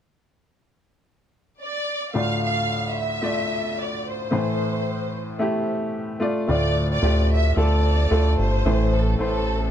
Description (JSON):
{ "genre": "pop", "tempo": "111 BPM", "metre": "4/4", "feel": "straight", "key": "D minor", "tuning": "A4 = 439 Hz", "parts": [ { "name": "warm symphonic violin section", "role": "melody", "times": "1.6-9.7 s", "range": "A4 to F5", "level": "-27 LUFS", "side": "equal", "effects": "none" }, { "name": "clear upright piano", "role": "accompaniment", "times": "2.1-9.7 s", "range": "D2 to D5", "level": "-24 LUFS", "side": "left 1 dB", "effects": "none" }, { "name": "chorused synth bass", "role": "bass", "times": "6.5-9.7 s", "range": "G1 to D2", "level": "-20 LUFS", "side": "equal", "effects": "none" } ], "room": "light reverb", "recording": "dark, warm production", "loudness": "-20 LUFS", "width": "side -10 dB against mid", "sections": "0.0-2.2 A section; 2.2-6.5 B section; 6.5-9.7 C section", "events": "none", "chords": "0.0 N.C.; 2.2 Dm; 4.3 Am; 6.2 Dm; 8.7 Am", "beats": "0.53 1.07 1.61 | 2.15 2.69 3.23 3.78 | 4.32 4.86 5.40 5.94 | 6.48 7.03 7.57 8.11 | 8.65 9.19" }